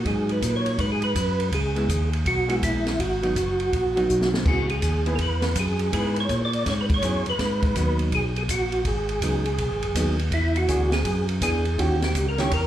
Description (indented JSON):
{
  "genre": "soul jazz organ trio",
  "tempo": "164 BPM",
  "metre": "4/4",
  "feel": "swing 65% on 8ths",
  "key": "G# minor",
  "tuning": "A4 = 439 Hz",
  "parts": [
    { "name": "percussive tonewheel organ", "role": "melody", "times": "0.0-12.7 s", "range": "E4 to D5", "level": "-26 LUFS", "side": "right 1 dB", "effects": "slow rotary speaker, chorus vibrato, slapback echo" },
    { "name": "tonewheel organ", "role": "bass", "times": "0.0-12.7 s", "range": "F#1 to A#2", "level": "-25 LUFS", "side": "equal", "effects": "overdrive" },
    { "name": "hollow-body jazz guitar", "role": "accompaniment", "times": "0.1-12.5 s", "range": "D#3 to G#4", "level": "-29 LUFS", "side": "right 1 dB", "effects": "none" },
    { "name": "open jazz drum kit", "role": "drums", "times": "0.1-12.6 s", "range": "crash cymbal, hi-hat, kick drum, ride cymbal, snare drum", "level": "-28 LUFS", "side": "equal", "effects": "none" }
  ],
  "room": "light reverb",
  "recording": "live gig heard through the venue's PA, club reverb",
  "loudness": "-21 LUFS",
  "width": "side -12 dB against mid",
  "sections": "0.0-12.7 A section",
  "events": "drum fill 4.1-4.5",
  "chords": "0.0 G#m7; 1.5 C#m7; 3.0 G#m7; 4.5 C#m7; 7.4 G#m7; 10.3 E7; 11.8 D#7b9"
}